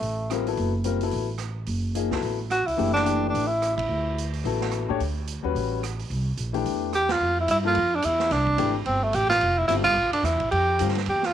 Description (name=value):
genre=modal jazz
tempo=217 BPM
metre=4/4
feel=swing 60% on 8ths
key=D major, F major from 7.2 s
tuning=A4 = 440 Hz
part: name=breathy tenor saxophone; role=melody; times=0.0-0.5, 2.5-4.3, 7.0-11.3 s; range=A3 to G4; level=-22 LUFS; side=right 1 dB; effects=none
part: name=upright bass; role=bass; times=0.0-11.3 s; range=F1 to A2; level=-28 LUFS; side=right 1 dB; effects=tube saturation
part: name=vintage drum kit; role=drums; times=0.0-11.3 s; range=crash cymbal, hi-hat, kick drum, ride cymbal, rim click, snare drum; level=-35 LUFS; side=right 9 dB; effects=none
part: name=warm upright piano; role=accompaniment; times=0.3-10.9 s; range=D3 to C#5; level=-28 LUFS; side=left 10 dB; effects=none
room=light reverb, small room ambience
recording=1960s-style stereo with parts hard left and right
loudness=-22 LUFS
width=side -10 dB against mid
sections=0.0-7.2 A section; 7.2-11.3 B section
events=band accent 3.7, 7.1, 9.8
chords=0.0 Dadd9; 6.1 C7; 7.2 Fmaj9